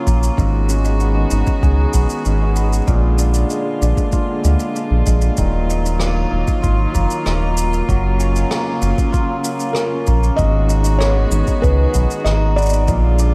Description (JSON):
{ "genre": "folktronica", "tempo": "96 BPM", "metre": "4/4", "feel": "straight", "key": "unclear", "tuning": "A4 = 440 Hz", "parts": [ { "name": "muted string quartet", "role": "sustained chords", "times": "0.0-13.3 s", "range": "Db3 to Gb4", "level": "-26 LUFS", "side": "equal", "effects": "none" }, { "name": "hammered dulcimer", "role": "arpeggios", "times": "0.0-13.3 s", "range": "Ab2 to Ab4", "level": "-26 LUFS", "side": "equal", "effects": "tape echo" }, { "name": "round analog bass", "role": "bass", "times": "0.1-13.3 s", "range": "Eb1 to D2", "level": "-18 LUFS", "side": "equal", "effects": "none" }, { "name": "electronic kick drum", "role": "drums", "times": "0.1-13.0 s", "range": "none", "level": "-21 LUFS", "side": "equal", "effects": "overdrive" }, { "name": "shaker and rim click", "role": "drums", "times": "0.1-13.3 s", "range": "none", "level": "-31 LUFS", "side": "equal", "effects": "none" }, { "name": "felt-muted upright piano", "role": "melody", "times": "9.7-13.3 s", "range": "Bb4 to Eb5", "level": "-24 LUFS", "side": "equal", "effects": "none" } ], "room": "light reverb, small room ambience", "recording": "none", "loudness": "-17 LUFS", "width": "mono", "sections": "0.0-13.3 A section", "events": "none", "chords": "0.4 Abm7; 2.9 Bb7; 5.4 Ebmadd9; 7.9 Gbmaj7; 10.4 Abm7", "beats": "| 0.38 1.01 1.63 2.26 | 2.88 3.51 4.13 4.76 | 5.38 6.01 6.63 7.26 | 7.88 8.51 9.13 9.76 | 10.38 11.01 11.63 12.26 | 12.88" }